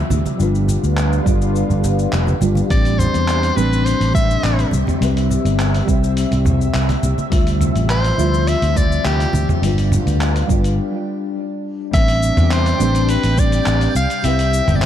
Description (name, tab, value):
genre	sunset chillout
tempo	104 BPM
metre	4/4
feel	straight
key	A minor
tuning	A4 = 441 Hz
part	nylon-string guitar	accompaniment	0.0-14.9 s	G3 to D5	-22 LUFS	moving between left 5 dB and right 2 dB	auto-pan, digital delay
part	lush unison pad	sustained chords	0.0-14.9 s	C3 to E5	-25 LUFS	equal	chorus, phaser
part	sustaining fretless electric bass	bass	0.1-14.9 s	F1 to E2	-18 LUFS	equal	none
part	dusty soul sampler-style drum kit	drums	0.1-14.9 s	handclaps, hi-hat, shaker, toms	-24 LUFS	equal	none
part	congas	percussion	0.1-10.0 s	none	-24 LUFS	right 2 dB	none
part	electronic kick drum	drums	1.3-13.5 s	none	-17 LUFS	equal	overdrive
part	edgy soprano saxophone	melody	2.7-14.9 s	G4 to F5	-22 LUFS	equal	digital delay
part	twinkling granular texture	texture	12.4-14.9 s	G5	-31 LUFS	right 3 dB	built-in reverb
room	light reverb, digital ambience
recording	dark, warm production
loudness	-14 LUFS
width	side -10 dB against mid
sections	0.0-11.9 A section; 11.9-14.9 B section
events	break 10.8-11.9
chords	0.4 G7; 2.7 Am11; 4.7 Cmaj7; 7.3 Dm11; 9.6 G7; 11.9 Am11; 14.0 Cmaj7